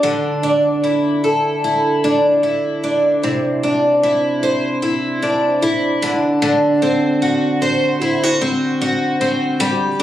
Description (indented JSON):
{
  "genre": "acoustic pop",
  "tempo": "75 BPM",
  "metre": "4/4",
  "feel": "swing 55% on 16ths",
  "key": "unclear",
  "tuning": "A4 = 440 Hz",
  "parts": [
    { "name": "picked twelve-string acoustic guitar", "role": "solo", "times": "0.0-10.0 s", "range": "C3 to C5", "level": "-14 LUFS", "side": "equal", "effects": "wide subtle chorus" }
  ],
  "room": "moderate studio ambience, RT60 0.5 s",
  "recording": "recorded on a phone in the room, club reverb, compression",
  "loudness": "-14 LUFS",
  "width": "side -12 dB against mid",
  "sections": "0.0-10.0 A section",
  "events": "none",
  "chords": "0.0 Dsus2; 3.2 Cadd9; 6.0 D7"
}